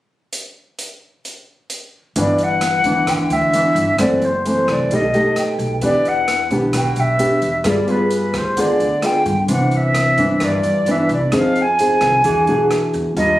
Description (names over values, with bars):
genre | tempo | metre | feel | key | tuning
bossa nova | 131 BPM | 4/4 | straight | G major | A4 = 441 Hz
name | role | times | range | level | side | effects
open jazz drum kit | drums | 0.3-13.3 s | hi-hat, kick drum, rim click | -27 LUFS | right 1 dB | none
silver concert flute | melody | 2.2-13.4 s | B4 to Ab5 | -18 LUFS | equal | none
nylon-string guitar | accompaniment | 2.2-13.4 s | F#2 to Ab4 | -18 LUFS | equal | none
upright bass | bass | 2.2-13.4 s | F#1 to G2 | -24 LUFS | equal | none
room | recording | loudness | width
light reverb | recorded on a phone in the room, studio reverb, compression | -14 LUFS | side -15 dB against mid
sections
0.3-2.2 A section; 2.2-13.4 B section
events
none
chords
0.3 N.C.; 2.2 G6; 4.0 F#m7b5; 4.9 B7b13; 5.8 Em7; 7.7 G7b9; 9.5 Cmaj9; 11.3 Fm7; 12.2 E9